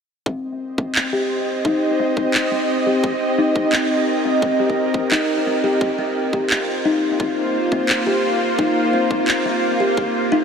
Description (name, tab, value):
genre	half-time drum and bass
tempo	173 BPM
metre	4/4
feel	swing 58% on 16ths, half-time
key	C minor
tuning	A4 = 440 Hz
part	bowed-like drone	sustained chords	1.1-10.4 s	Bb3 to Eb5	-20 LUFS	right 1 dB	built-in reverb, sidechain pumping
part	kalimba	arpeggios	0.3-10.4 s	C4 to G4	-21 LUFS	left 2 dB	vintage 12-bit sampler grit, low-pass filter, analog delay
part	electronic kick drum	drums	0.3-10.1 s	none	-24 LUFS	right 1 dB	high-pass filter on kick
part	electronic handclaps	drums	1.0-9.4 s	none	-24 LUFS	right 1 dB	none
room	wet huge ambient reverb, RT60 8.6 s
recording	dreamy mix soaked in reverb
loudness	-17 LUFS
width	side -6 dB against mid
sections	0.3-10.4 A section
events	filter sweep on kalimba 0.3-10.4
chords	0.3 Cm; 5.8 Bbsus2